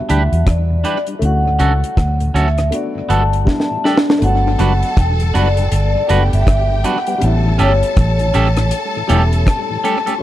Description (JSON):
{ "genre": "lovers rock reggae", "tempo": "80 BPM", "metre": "4/4", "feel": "swing 62% on 16ths", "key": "unclear", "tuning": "A4 = 441 Hz", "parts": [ { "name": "vibraphone with soft mallets", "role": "melody", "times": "0.0-10.2 s", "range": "C#5 to A5", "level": "-21 LUFS", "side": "left 1 dB", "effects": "tape echo" }, { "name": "mellow tonewheel organ", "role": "accompaniment", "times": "0.0-10.2 s", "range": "D2 to D4", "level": "-27 LUFS", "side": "left 4 dB", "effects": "slow rotary speaker, tape echo" }, { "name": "warm baby grand piano", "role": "accompaniment", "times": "0.0-10.2 s", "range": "F#3 to G4", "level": "-26 LUFS", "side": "left 4 dB", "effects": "tape echo" }, { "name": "twangy electric guitar", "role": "stabs", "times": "0.1-10.1 s", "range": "B3 to B4", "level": "-21 LUFS", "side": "right 4 dB", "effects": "none" }, { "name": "vintage muted fingered electric bass", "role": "bass", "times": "0.1-9.5 s", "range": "E1 to E2", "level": "-15 LUFS", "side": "equal", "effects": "none" }, { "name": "deep reggae drum kit", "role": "drums", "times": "0.1-10.2 s", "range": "hi-hat, kick drum, rim click, snare drum", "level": "-18 LUFS", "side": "equal", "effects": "tape echo" }, { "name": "warm studio string section", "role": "second line", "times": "4.2-10.2 s", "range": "G4 to A5", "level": "-24 LUFS", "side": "left 1 dB", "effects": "tape echo" } ], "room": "light reverb, small room ambience", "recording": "dark, warm production", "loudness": "-13 LUFS", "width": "side -13 dB against mid", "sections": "0.0-4.2 A section; 4.2-10.2 B section", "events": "drum fill 3.5-4.2", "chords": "0.0 Em7; 1.2 Dmaj7; 2.7 Gmaj9; 3.5 A7sus4; 4.2 Gmaj7; 7.2 A7" }